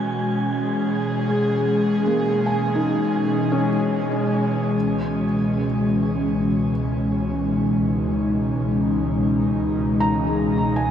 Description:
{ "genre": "ambient", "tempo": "free time", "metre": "none", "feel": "none", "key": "C# dorian", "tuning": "A4 = 439 Hz", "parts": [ { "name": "airy breathy pad", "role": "sustained chords", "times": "0.0-10.9 s", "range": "B2 to G#4", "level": "-20 LUFS", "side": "equal", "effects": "chorus" }, { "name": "wind-like tuned noise texture", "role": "texture", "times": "0.0-4.8 s", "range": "G#5", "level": "-35 LUFS", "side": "right 2 dB", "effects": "built-in reverb" }, { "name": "felt-muted upright piano", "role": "arpeggios", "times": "1.3-10.9 s", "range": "G#3 to A#5", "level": "-27 LUFS", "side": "equal", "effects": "diffuse ambient delay" }, { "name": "warm studio double bass section", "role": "bass", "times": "4.8-10.9 s", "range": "C#2", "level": "-29 LUFS", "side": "equal", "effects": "none" } ], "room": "wet shimmer reverb, RT60 8.0 s", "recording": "dark, warm production, nothing above 10.8 kHz", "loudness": "-19 LUFS", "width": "side -9 dB against mid", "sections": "0.0-4.7 A section; 4.7-10.9 B section", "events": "filter sweep on analog synth pad 4.7-10.9", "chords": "0.0 E6; 4.7 C#m9", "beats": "free time" }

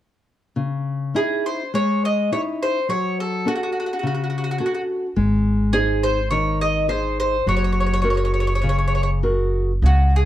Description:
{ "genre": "italian folk, Italian serenade", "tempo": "104 BPM", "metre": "4/4", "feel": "rubato", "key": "C# harmonic minor", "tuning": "A4 = 440 Hz", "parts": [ { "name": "nylon-string guitar", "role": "accompaniment", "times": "0.6-10.3 s", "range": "C#3 to B#4", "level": "-23 LUFS", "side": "left 2 dB", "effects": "none" }, { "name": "mandolin", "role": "melody", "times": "1.2-10.3 s", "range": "F#4 to D#5", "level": "-22 LUFS", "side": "right 1 dB", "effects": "plate reverb" }, { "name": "upright bass", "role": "bass", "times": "5.2-10.3 s", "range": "F#1 to C#2", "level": "-20 LUFS", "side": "right 1 dB", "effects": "none" } ], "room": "moderate small room reverb, RT60 0.5 s", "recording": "dark, warm production", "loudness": "-18 LUFS", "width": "side -12 dB against mid", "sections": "0.6-9.8 A section", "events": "none", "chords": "0.6 C#madd9; 2.9 F#m; 5.2 G#; 7.5 F#add9", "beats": "| 0.56 1.15 1.73 2.31 | 2.89 3.46 4.04 4.61 | 5.17 5.74 6.31 6.89 | 7.47 8.05 8.63 9.23 | 9.83" }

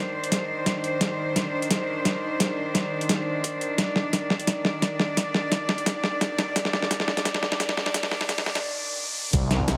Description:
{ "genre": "half-time drum and bass", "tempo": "173 BPM", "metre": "4/4", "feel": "half-time", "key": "C minor", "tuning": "A4 = 439 Hz", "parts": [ { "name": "clear symphonic cello section", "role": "sustained chords", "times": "0.0-9.3 s", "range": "Eb3 to D5", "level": "-31 LUFS", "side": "equal", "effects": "sidechain pumping" }, { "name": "boom bap sampler-style drum kit", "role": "drums", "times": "0.2-9.8 s", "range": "hi-hat, snare drum", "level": "-28 LUFS", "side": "equal", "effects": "none" }, { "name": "electronic kick drum", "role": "drums", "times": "0.3-9.7 s", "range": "none", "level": "-32 LUFS", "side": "equal", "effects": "none" }, { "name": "riser and impact", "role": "sound effects", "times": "6.3-9.8 s", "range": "none", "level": "-37 LUFS", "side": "equal", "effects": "none" }, { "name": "phased detuned saw bass", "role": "bass", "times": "9.3-9.8 s", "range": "C2", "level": "-27 LUFS", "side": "equal", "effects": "phaser, tube saturation" } ], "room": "moderate echo chamber reverb, RT60 1.7 s, digital ambience", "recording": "high-pass filter", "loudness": "-26 LUFS", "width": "mono", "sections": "0.0-9.3 A section", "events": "build-up 0.0-9.3; drum fill 0.0-8.6; filter sweep 0.0-9.3; impact 9.3-9.8", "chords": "0.0 Cmadd9", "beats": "0.32 0.67 | 1.01 1.36 1.71 2.05 | 2.40 2.75 3.09 3.44 | 3.79 4.13 4.48 4.83 | 5.17 5.52 5.87 6.21 | 6.56 6.91 7.25 7.60 | 7.95 8.29 8.64 8.99 | 9.34 9.68" }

